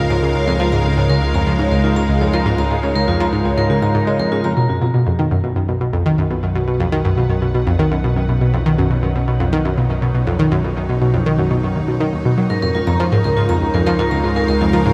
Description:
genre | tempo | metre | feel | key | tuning
ambient, sequencer-driven space music | 121 BPM | 4/4 | straight | B lydian | A4 = 441 Hz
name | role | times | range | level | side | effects
evolving wavetable pad | sustained chords | 0.0-14.9 s | B2 to F#5 | -24 LUFS | equal | ensemble chorus, built-in reverb
vibraphone with hard mallets | arpeggios | 0.0-4.5, 12.5-14.8 s | E#4 to A#5 | -23 LUFS | equal | tape echo
analog pluck | riff | 0.0-14.9 s | C#2 to G#3 | -19 LUFS | equal | chorus, tape echo
round analog bass | bass | 0.0-14.9 s | B1 to C#2 | -27 LUFS | equal | none
wind-like tuned noise texture | texture | 6.9-14.9 s | C#4 to C#5 | -36 LUFS | equal | none
room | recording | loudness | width
wet lush hall reverb, RT60 2.6 s | dreamy mix soaked in reverb | -17 LUFS | mono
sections
0.0-4.6 A section; 4.6-14.9 B section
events
fade-in on ambient pad 4.6-14.9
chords
0.0 C#6; 4.6 B; 12.5 C#6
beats
0.10 | 0.60 1.10 1.59 2.09 | 2.58 3.08 3.58 4.07 | 4.57 5.06 5.56 6.06 | 6.55 7.05 7.54 8.04 | 8.54 9.03 9.53 10.02 | 10.52 11.01 11.51 12.01 | 12.50 13.00 13.49 13.99 | 14.48

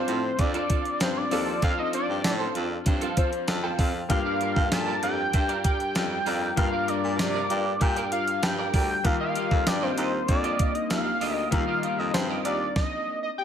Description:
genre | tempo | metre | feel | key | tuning
1980s-style pop | 97 BPM | 4/4 | straight | unclear | A4 = 440 Hz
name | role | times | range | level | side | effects
octave-doubled lead | melody | 0.0-13.4 s | C5 to A5 | -28 LUFS | equal | chorus
marimba with medium hard mallets | second line | 0.0-13.4 s | C4 to A4 | -35 LUFS | left 6 dB | tape echo
bright concert grand piano | accompaniment | 0.0-12.8 s | G2 to A5 | -33 LUFS | left 5 dB | none
overdriven semi-hollow guitar | accompaniment | 0.0-13.3 s | Eb3 to G4 | -37 LUFS | equal | lush chorus
twelve-string electric guitar | riff | 0.0-12.6 s | C4 to Eb5 | -34 LUFS | right 6 dB | ensemble chorus, tape echo
bright baritone saxophone | bass | 0.1-12.7 s | D2 to C3 | -31 LUFS | equal | none
clean 12-bit digital drum machine | drums | 0.1-12.9 s | hi-hat, kick drum, snare drum, tambourine | -26 LUFS | equal | gated reverb
room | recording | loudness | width
light reverb, digital ambience | none | -23 LUFS | side -8 dB against mid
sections
0.0-13.4 A section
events
grand piano fill 3.2-4.1; stop 12.8-13.4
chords
0.0 F; 4.1 Gm7; 9.0 Ebadd9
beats
0.39 1.01 | 1.62 2.24 2.86 3.48 | 4.10 4.72 5.34 5.96 | 6.57 7.19 7.81 8.43 | 9.05 9.67 10.29 10.90 | 11.52 12.14 12.76 13.38

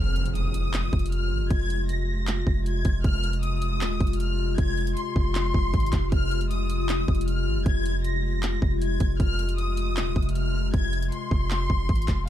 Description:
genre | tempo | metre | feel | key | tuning
hip hop, trap | 156 BPM | 4/4 | half-time | F minor | A4 = 442 Hz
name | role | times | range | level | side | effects
warm studio violin section | melody | 0.0-12.2 s | C6 to Bb6 | -33 LUFS | left 2 dB | none
warbly tape-like pad | sustained chords | 0.0-12.2 s | C3 to F4 | -31 LUFS | left 3 dB | chorus, built-in reverb
warm 808-style bass | bass | 0.0-12.3 s | Eb1 to Ab1 | -26 LUFS | equal | none
impact | sound effects | 0.0-1.5 s | none | -34 LUFS | equal | none
trap drum kit | drums | 0.2-12.2 s | handclaps, hi-hat, kick drum | -26 LUFS | equal | overdrive
room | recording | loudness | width
little or no reverb | dark, warm production | -23 LUFS | side -12 dB against mid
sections
0.0-12.3 A section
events
impact 0.0-1.5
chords
0.0 Fm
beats
0.35 0.74 1.12 | 1.51 1.89 2.27 2.66 | 3.04 3.43 3.81 4.20 | 4.58 4.97 5.35 5.74 | 6.12 6.51 6.89 7.28 | 7.66 8.04 8.43 8.81 | 9.20 9.58 9.97 10.35 | 10.74 11.12 11.51 11.89

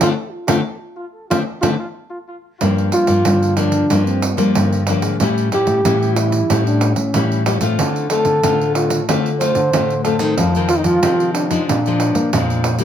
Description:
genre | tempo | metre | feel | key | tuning
samba and choro | 93 BPM | 4/4 | straight | G minor | A4 = 440 Hz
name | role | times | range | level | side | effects
dark trombone | melody | 0.0-12.6 s | Bb3 to C5 | -19 LUFS | right 1 dB | tape echo
nylon-string guitar | accompaniment | 0.0-12.8 s | F2 to F4 | -21 LUFS | left 6 dB | none
nylon-string guitar | bass | 0.0-12.8 s | G2 to Bb3 | -19 LUFS | equal | none
pandeiro | percussion | 0.0-12.8 s | none | -22 LUFS | right 5 dB | none
room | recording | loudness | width
little or no reverb | close, detailed microphones | -14 LUFS | side -9 dB against mid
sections
0.0-2.6 A section; 2.6-12.8 B section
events
band accent 0.0-2.6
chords
0.0 D7(no3); 2.6 Gm7; 5.2 A7; 7.8 Dm7; 10.4 Fm7; 11.7 Bb7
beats
| 0.02 0.67 1.32 1.97 | 2.61 3.26 3.91 4.56 | 5.21 5.86 6.50 7.15 | 7.80 8.45 9.09 9.74 | 10.39 11.03 11.68 12.33

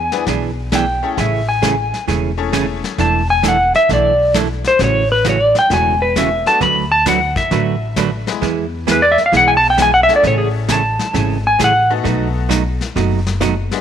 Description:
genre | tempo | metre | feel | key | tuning
country, western swing | 132 BPM | 4/4 | swing 67% on 8ths | A major | A4 = 440 Hz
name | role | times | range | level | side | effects
clean lap steel guitar | melody | 0.0-11.9 s | G#4 to B5 | -14 LUFS | left 1 dB | none
upright bass | bass | 0.0-13.7 s | E1 to E2 | -21 LUFS | left 1 dB | none
tack piano | accompaniment | 0.1-3.0, 6.5-13.8 s | G#3 to B4 | -24 LUFS | left 11 dB | none
vintage brush drum kit | drums | 0.1-13.8 s | brushed snare drum, hi-hat, kick drum, snare drum | -24 LUFS | left 6 dB | none
hollow-body jazz guitar | accompaniment | 0.3-13.5 s | B2 to B4 | -20 LUFS | right 10 dB | none
room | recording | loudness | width
light reverb, small room reverb | 1960s-style stereo with parts hard left and right | -12 LUFS | side -9 dB against mid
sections
0.0-13.8 A section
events
electric slide guitar solo 0.0-13.8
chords
0.0 E7; 1.2 Amaj7; 3.0 E7sus4; 4.8 A6; 6.6 D6; 8.4 E; 10.2 Amaj7; 12.1 B7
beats
0.27 0.72 | 1.18 1.63 2.08 2.54 | 2.99 3.44 3.89 4.35 | 4.80 5.25 5.71 6.16 | 6.61 7.07 7.52 7.97 | 8.43 8.88 9.33 9.79 | 10.24 10.69 11.15 11.60 | 12.05 12.51 12.96 13.41

